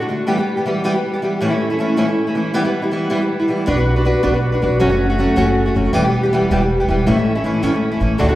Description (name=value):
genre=celtic folk, Celtic jig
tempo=106 BPM (dotted quarters)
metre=6/8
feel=straight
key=E dorian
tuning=A4 = 439 Hz
part: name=fingerpicked twelve-string acoustic guitar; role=accompaniment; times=0.0-8.4 s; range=D2 to B4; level=-16 LUFS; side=equal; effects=none
part: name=upright bass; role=bass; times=3.7-8.4 s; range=E1 to D2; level=-19 LUFS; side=equal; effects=none
room=wet recital hall reverb, RT60 1.6 s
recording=heard from further back in the room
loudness=-15 LUFS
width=side -15 dB against mid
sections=0.0-3.7 A section; 3.7-8.4 A section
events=none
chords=0.3 Em; 1.4 A; 2.5 Em; 3.7 Bm; 4.8 F#m; 5.9 Em; 7.1 A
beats=| 0.28 0.84 | 1.41 1.97 | 2.54 3.10 | 3.67 4.23 | 4.80 5.36 | 5.93 6.50 | 7.06 7.63 | 8.19